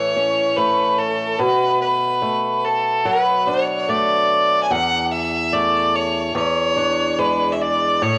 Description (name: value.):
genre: celtic folk.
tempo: 72 BPM.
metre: 4/4.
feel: rubato.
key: unclear.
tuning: A4 = 444 Hz.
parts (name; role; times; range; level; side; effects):
bright fiddle; melody; 0.0-8.2 s; A4 to G#5; -20 LUFS; equal; none.
fingerpicked swing-style acoustic guitar; accompaniment; 0.0-8.2 s; E2 to E4; -24 LUFS; equal; cassette tape.
room: light reverb, small room ambience.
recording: home recording on cassette.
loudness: -19 LUFS.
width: mono.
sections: 0.0-8.2 A section.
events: none.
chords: 0.0 A; 1.4 Bm7; 4.7 Esus4; 6.3 E7.